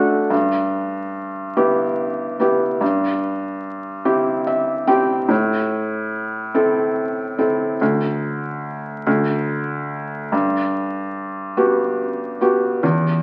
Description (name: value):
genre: folk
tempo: 48 BPM (dotted quarters)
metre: 6/8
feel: straight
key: G major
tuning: A4 = 435 Hz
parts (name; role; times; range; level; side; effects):
- felt-muted upright piano; solo; 0.0-13.2 s; D2 to G5; -20 LUFS; equal; none
room: wet large studio reverb, RT60 1.3 s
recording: very old 78 rpm record, vinyl crackle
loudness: -21 LUFS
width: mono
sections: 0.0-10.3 A section; 10.3-13.2 A section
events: none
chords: 0.3 G6; 2.8 C/G; 5.3 Am; 7.8 N.C.; 10.3 Gmaj7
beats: | 0.32 1.57 | 2.82 4.07 | 5.31 6.56 | 7.81 9.06 | 10.32 11.58 | 12.84